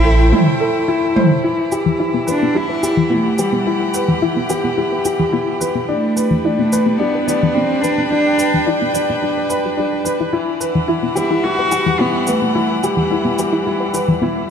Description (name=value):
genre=piano and strings electronica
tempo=108 BPM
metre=4/4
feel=straight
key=E minor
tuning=A4 = 445 Hz
part: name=warm cello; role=melody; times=0.0-12.8 s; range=G3 to F#4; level=-19 LUFS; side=right 1 dB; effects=digital delay
part: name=clear string quartet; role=sustained chords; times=0.0-14.5 s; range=E3 to G5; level=-22 LUFS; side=equal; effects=none
part: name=warm baby grand piano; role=riff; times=0.0-14.5 s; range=D4 to D5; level=-19 LUFS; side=left 2 dB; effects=digital delay
part: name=electronic toms and shaker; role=drums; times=0.3-14.1 s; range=none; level=-18 LUFS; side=right 1 dB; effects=none
part: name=soft round pluck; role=arpeggios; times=1.4-14.3 s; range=E3 to E5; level=-21 LUFS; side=left 2 dB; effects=chorus, digital delay
room=moderate concert hall reverb, RT60 2.5 s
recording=dark, warm production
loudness=-14 LUFS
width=side -7 dB against mid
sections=0.0-1.4 A section; 1.4-14.5 B section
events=filter sweep on grand piano 0.0-1.4; filter sweep on synth arpeggio sound 1.4-14.5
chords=0.0 Am7; 1.4 Emadd9